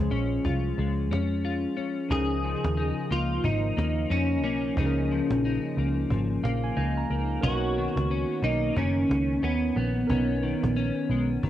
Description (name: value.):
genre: indie pop, bedroom pop.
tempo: 90 BPM.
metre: 4/4.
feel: swing 60% on 16ths.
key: Db mixolydian.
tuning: A4 = 440 Hz.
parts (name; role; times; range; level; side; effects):
barky tine electric piano; accompaniment; 0.0-11.5 s; Eb3 to Bb5; -35 LUFS; right 8 dB; overdrive, cassette tape, plate reverb.
clean electric guitar; accompaniment; 0.0-11.5 s; Db3 to F4; -30 LUFS; left 5 dB; analog chorus, vibrato effect, cassette tape.
vintage muted picked electric bass; bass; 0.0-11.5 s; Gb1 to F2; -28 LUFS; right 1 dB; none.
cajon; drums; 0.1-11.5 s; none; -32 LUFS; right 1 dB; cassette tape.
clean electric guitar; melody; 2.1-11.5 s; Cb4 to Ab4; -28 LUFS; equal; analog chorus.
room: moderate small room reverb, RT60 0.5 s.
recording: home recording on cassette.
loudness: -24 LUFS.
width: side -12 dB against mid.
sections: 0.0-2.1 A section; 2.1-11.5 B section.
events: tine electric piano fill 6.1-7.4.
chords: 0.0 Db; 2.1 Db69; 7.4 Cbmaj9.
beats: 0.11 0.78 1.44 | 2.11 2.77 3.44 4.11 | 4.77 5.44 6.10 6.77 | 7.44 8.10 8.77 9.43 | 10.10 10.77 11.43.